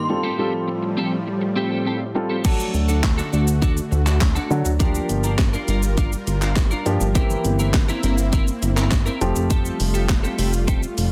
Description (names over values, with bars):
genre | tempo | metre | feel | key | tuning
dance-pop | 102 BPM | 4/4 | straight | unclear | A4 = 440 Hz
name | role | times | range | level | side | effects
synth chime | melody | 0.0-1.8 s | C6 | -33 LUFS | equal | ensemble chorus, tremolo, tape echo
supersaw pad | sustained chords | 0.0-11.1 s | A2 to Bb4 | -30 LUFS | equal | sidechain pumping
warm baby grand piano | accompaniment | 0.1-10.2 s | E3 to A4 | -27 LUFS | equal | sidechain pumping
twelve-string electric guitar | riff | 0.1-11.0 s | C4 to Bb4 | -30 LUFS | equal | analog chorus
house drum kit | drums | 2.4-11.1 s | crash cymbal, handclaps, hi-hat, kick drum, shaker, snare drum | -24 LUFS | equal | soft clipping on snare
chorused synth bass | bass | 2.7-11.1 s | F1 to D3 | -23 LUFS | equal | sidechain pumping
room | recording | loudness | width
light reverb | dense, heavily limited modern master | -21 LUFS | mono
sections
0.0-2.4 A section; 2.4-11.1 B section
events
none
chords
0.1 Fadd9; 2.4 D; 4.8 Gm7; 7.2 C7/G; 9.2 Fadd9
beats
| 0.10 0.68 1.27 1.86 | 2.45 3.04 3.62 4.21 | 4.80 5.39 5.98 6.57 | 7.15 7.74 8.33 8.92 | 9.51 10.10 10.68